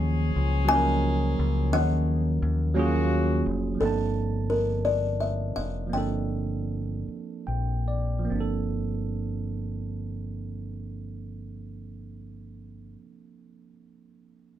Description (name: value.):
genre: R&B.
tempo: 46-58 BPM (dotted quarters).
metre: 6/8.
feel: straight.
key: unclear.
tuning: A4 = 441 Hz.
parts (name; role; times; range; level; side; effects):
buzzing kalimba; melody; 0.0-7.4 s; A4 to Ab5; -27 LUFS; left 2 dB; none.
tine electric piano; accompaniment; 0.0-14.6 s; F3 to A5; -31 LUFS; right 4 dB; none.
warm horn section; stabs; 0.0-3.4 s; Db3 to Ab4; -33 LUFS; left 5 dB; none.
deep dub fingered electric bass; bass; 0.0-13.0 s; F1 to Eb2; -28 LUFS; left 1 dB; none.
room: light reverb.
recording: band playing live in one room.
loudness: -24 LUFS.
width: side -11 dB against mid.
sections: 0.0-3.8 A section; 3.8-8.3 B section; 8.3-13.5 C section.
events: slowing down 3.8-8.3; tine electric piano fill 7.1-8.3.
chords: 0.0 Ebm11; 3.8 Gm11.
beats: 0.68 | 1.72 2.75 | 3.79 4.83 | 5.92 7.06 | 8.30 9.59 | 10.88 12.18.